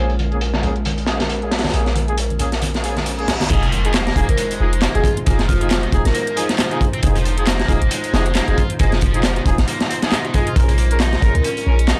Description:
breakbeat, breaks; 136 BPM; 4/4; swing 57% on 16ths; F minor; A4 = 441 Hz
warbly tape-like pad; sustained chords; 0.0-12.0 s; Ab3 to C5; -31 LUFS; equal; chorus, built-in reverb, vintage 12-bit sampler grit, sidechain pumping
mellow brass ensemble; stabs; 0.0-11.8 s; Bb3 to Bb4; -28 LUFS; equal; vintage 12-bit sampler grit, low-pass filter, analog delay
warm 808-style bass; bass; 0.0-11.9 s; Eb1 to Db2; -21 LUFS; equal
crunchy breakbeat drum kit; drums; 0.1-12.0 s; crash cymbal, hi-hat, kick drum, snare drum; -22 LUFS; equal; high-pass filter on kick, high-pass filter on hats, high-pass filter on cymbals, high-pass filter on snare, high-pass filter on room
house drum kit; drums; 0.1-12.0 s; handclaps, hi-hat; -32 LUFS; equal
congas; percussion; 0.2-3.5 s; -31 LUFS; equal
reverse cymbal and impact; sound effects; 2.9-5.3 s; -32 LUFS; equal
scooped high-gain guitar; riff; 3.6-12.0 s; Eb3 to F4; -29 LUFS; equal; distortion, tube saturation, analog delay
vibraphone with medium mallets; melody; 4.3-6.4, 11.3-11.5 s; F4 to Bb4; -29 LUFS; equal; telephone sound, analog delay
studio ambience; dry, gritty hardware recording, low-pass filter; -18 LUFS; mono
0.0-3.5 A section; 3.5-12.0 B section
filter sweep 0.0-3.5; reverse cymbal 2.9-3.5; drop 3.5-12.0; impact 3.5-5.3
0.0 Bbm7; 3.5 Fm7; 10.6 Bbm7
0.41 0.86 1.30 | 1.74 2.18 2.62 3.06 | 3.50 3.94 4.38 4.83 | 5.27 5.71 6.15 6.59 | 7.03 7.47 7.91 8.36 | 8.80 9.24 9.68 10.12 | 10.56 11.00 11.44 11.88

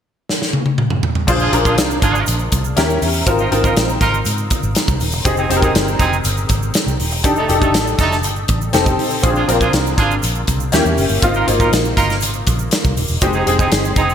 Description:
polished 1980s jazz-funk pop; 121 BPM; 4/4; straight; A4 = 440 Hz
modern studio drum kit; drums; 0.3-14.1 s; crash cymbal, hi-hat, kick drum, snare drum, toms; -18 LUFS; equal; gated reverb
clear grand piano; accompaniment; 1.3-14.1 s; Ab3 to C5; -18 LUFS; left 2 dB; ensemble chorus
vintage muted fingered electric bass; bass; 1.3-14.1 s; Eb1 to Ab2; -20 LUFS; equal
tube shaker; percussion; 1.3-14.1 s; -32 LUFS; right 15 dB
clear horn section; second line; 1.4-14.1 s; A3 to Bb4; -21 LUFS; right 4 dB
light reverb, small room ambience; bright 1980s-style digital production; -14 LUFS; side -8 dB against mid
0.0-1.3 A section; 1.3-14.1 B section
drum fill 0.3-1.3
0.0 N.C.; 1.3 Bb9; 2.8 Eb7b9; 3.3 Ab69; 5.3 Fm9; 7.2 F13; 8.7 F7; 9.2 Bb9; 10.7 Eb7b9; 11.2 Ab69; 13.2 Fm9
0.29 0.78 | 1.28 1.77 2.27 2.77 | 3.27 3.76 4.26 4.75 | 5.25 5.75 6.25 6.74 | 7.24 7.74 8.24 8.73 | 9.23 9.73 10.23 10.73 | 11.22 11.72 12.22 12.72 | 13.22 13.72

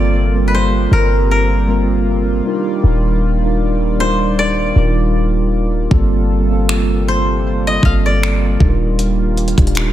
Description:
contemporary R&B; 78 BPM; 4/4; swing 54% on 16ths; G minor; A4 = 440 Hz
koto; melody; 0.0-9.7 s; Bb4 to F5; -20 LUFS; left 2 dB; analog delay
mellow tine electric piano; accompaniment; 0.0-9.9 s; G3 to Bb4; -19 LUFS; right 1 dB; medium stereo tremolo
chorused pulse-width pad; sustained chords; 0.0-9.9 s; C3 to D5; -23 LUFS; equal; sidechain pumping
warm 808-style bass; bass; 0.0-9.9 s; Eb1 to G1; -16 LUFS; equal
clean 12-bit digital drum machine; drums; 5.9-9.9 s; finger snaps, hi-hat, kick drum; -16 LUFS; equal; overdrive
light reverb; -12 LUFS; side -12 dB against mid
0.0-9.9 A section
0.0 Gm11; 2.5 Ebmaj9; 5.9 Gm11; 8.6 Ebmaj9
0.53 1.30 2.06 | 2.83 3.60 4.37 5.14 | 5.91 6.68 7.45 8.22 | 8.99 9.76

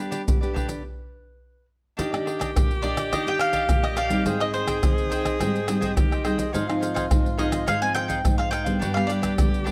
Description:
samba and choro; 105 BPM; 4/4; straight; A4 = 439 Hz
mandolin; melody; 0.0-9.7 s; B4 to Ab5; -30 LUFS; equal
cavaquinho; accompaniment; 0.0-9.7 s; D4 to G5; -35 LUFS; equal
nylon-string guitar; accompaniment; 0.0-9.7 s; G2 to G4; -30 LUFS; equal
maracas, pandeiro, surdo and tamborim; percussion; 0.1-9.7 s; -27 LUFS; equal
breathy tenor saxophone; second line; 2.0-9.7 s; F4 to Ab4; -33 LUFS; equal
light reverb; close, detailed microphones; -24 LUFS; mono
0.0-2.0 A section; 2.0-9.7 B section
stop 0.8-2.0
0.0 G; 2.0 Ebmaj7; 4.3 Abmaj7; 6.5 Fm7/Ab; 8.8 G
0.27 0.84 1.41 | 1.98 2.55 3.12 3.69 | 4.26 4.83 5.40 5.97 | 6.54 7.11 7.68 8.25 | 8.82 9.39

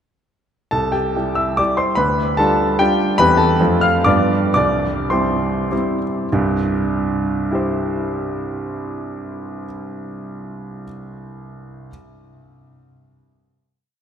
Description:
classical, romantic triple-time dance for piano with dotted rhythms; 95-159 BPM; 3/4; rubato; C major; A4 = 440 Hz
clear concert grand piano; solo; 0.7-11.9 s; C2 to F6; -17 LUFS; equal
wet cathedral reverb, RT60 5.2 s; in a vast, echoing space; -16 LUFS; side -8 dB against mid
0.7-6.3 A section; 6.3-9.8 final chord
slowing down 2.6-6.3
0.7 C; 2.0 G7/D; 3.2 C/E; 3.6 F; 4.1 G7; 4.6 C
| 0.73 1.16 1.59 | 1.98 2.39 2.80 | 3.19 3.60 4.06 | 4.55 5.12 5.71 | 6.32 6.90 7.50 | 8.06 8.63 9.23

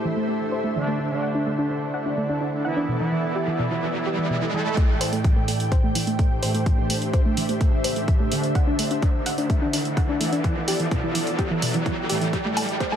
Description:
melodic techno; 127 BPM; 4/4; straight; A dorian; A4 = 438 Hz
soft round pluck; arpeggios; 0.0-13.0 s; B2 to F#5; -27 LUFS; equal; chorus, sidechain pumping, tape echo
analog synth brass; stabs; 0.0-13.0 s; A2 to A4; -28 LUFS; right 2 dB; chorus, cassette tape, sidechain pumping, tape echo
ethereal airy pad; texture; 0.0-13.0 s; A3 to G5; -29 LUFS; left 1 dB; ensemble chorus, built-in reverb, tremolo, sidechain pumping
riser; sound effects; 2.1-13.0 s; -32 LUFS; right 1 dB
electronic hi-hat and woodblock; drums; 4.8-13.0 s; -29 LUFS; right 2 dB; low-pass filter on hats, low-pass filter on perc, low-pass filter on room
electronic kick drum; drums; 4.8-12.9 s; -22 LUFS; equal
light reverb; high-pass filter; -21 LUFS; side -9 dB against mid
0.0-4.8 A section; 4.8-13.0 B section
filter sweep on synth arpeggio sound 0.0-4.8; filter sweep on analog polysynth 0.0-4.8, 4.8-13.0; riser 2.1-4.8, 4.8-13.0; build-up 4.8-13.0; filter sweep 4.8-13.0; drum fill 12.3-13.0
0.0 Am; 1.0 D; 2.9 Em; 4.8 Am; 8.6 D; 10.4 Em; 12.3 Am
0.05 0.52 | 0.99 1.47 1.94 2.41 | 2.88 3.36 3.83 4.30 | 4.77 5.25 5.72 6.19 | 6.66 7.13 7.61 8.08 | 8.55 9.03 9.50 9.97 | 10.44 10.91 11.39 11.86 | 12.33 12.80

